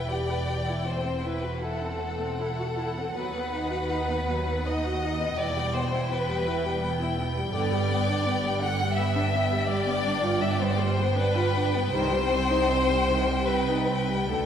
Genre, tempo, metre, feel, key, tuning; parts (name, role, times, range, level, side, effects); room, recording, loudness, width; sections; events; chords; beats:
classical, slow romantic movement for string orchestra; 71-85 BPM; 3/4; rubato; E minor, G major from 7.5 s; A4 = 442 Hz
rich chamber violin section; melody; 0.0-14.5 s; F#5 to G5; -33 LUFS; left 3 dB
clear chamber violin section; second line; 0.0-14.5 s; A4 to F#5; -28 LUFS; left 2 dB
rich symphonic viola section; accompaniment; 0.0-14.5 s; D3 to B4; -31 LUFS; right 1 dB
rich chamber cello section; bass; 0.0-14.5 s; C2 to G2; -32 LUFS; right 2 dB
rich studio double bass section; bass; 0.0-14.5 s; E1 to D#2; -31 LUFS; right 2 dB
wet scoring stage reverb, RT60 1.8 s; heard from further back in the room; -24 LUFS; side -8 dB against mid
0.0-14.5 A section
0.0 Em; 0.9 F#m7b5/E; 3.1 B/D#; 5.4 Em; 7.5 G; 9.7 G7; 11.9 Cm
0.11 | 0.87 1.62 2.39 | 3.14 3.89 4.65 | 5.39 6.11 6.82 | 7.53 8.25 8.97 | 9.69 10.42 11.18 | 11.92 12.69 13.48 | 14.30